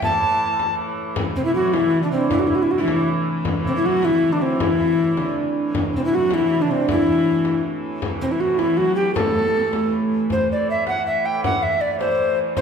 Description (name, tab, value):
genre	medieval dance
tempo	105 BPM (dotted quarters)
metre	6/8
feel	straight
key	unclear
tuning	A4 = 440 Hz
part	tenor recorder	melody	0.0-12.6 s	C4 to A5	-20 LUFS	left 1 dB	none
part	rich hurdy-gurdy	drone	0.0-12.6 s	A2 to E3	-29 LUFS	right 1 dB	none
part	frame drum	percussion	0.0-12.6 s	none	-28 LUFS	left 2 dB	none
part	concert harp	second line	1.4-12.6 s	C4 to G5	-26 LUFS	right 4 dB	none
part	warm viola da gamba	second line	1.4-9.9 s	C3 to B3	-25 LUFS	left 1 dB	none
room	wet recital hall reverb, RT60 1.6 s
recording	recorded in a church or concert hall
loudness	-18 LUFS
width	side -6 dB against mid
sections	0.0-1.2 A section; 1.2-10.3 A section; 10.3-12.6 B section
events	none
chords	none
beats	| 0.01 0.59 | 1.16 1.74 | 2.31 2.88 | 3.46 4.03 | 4.60 5.17 | 5.74 6.31 | 6.88 7.45 | 8.02 8.59 | 9.16 9.73 | 10.29 10.86 | 11.43 11.99 | 12.56